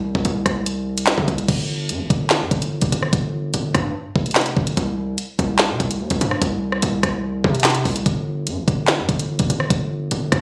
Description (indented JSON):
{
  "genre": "hip hop, drill",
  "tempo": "146 BPM",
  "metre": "4/4",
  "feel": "half-time",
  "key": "unclear",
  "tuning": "A4 = 440 Hz",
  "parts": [
    { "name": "distorted 808-style bass", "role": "bass", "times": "0.0-10.4 s", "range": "F1 to C3", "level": "-24 LUFS", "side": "equal", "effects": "distortion" },
    { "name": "drill drum kit", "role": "drums", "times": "0.1-10.4 s", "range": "crash cymbal, handclaps, hi-hat, kick drum, rim click, snare drum", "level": "-22 LUFS", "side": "equal", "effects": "none" }
  ],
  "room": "digital ambience",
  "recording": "recorded on a phone in the room, studio reverb",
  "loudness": "-21 LUFS",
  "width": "mono",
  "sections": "0.0-1.5 A section; 1.5-10.4 B section",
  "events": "none",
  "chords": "none"
}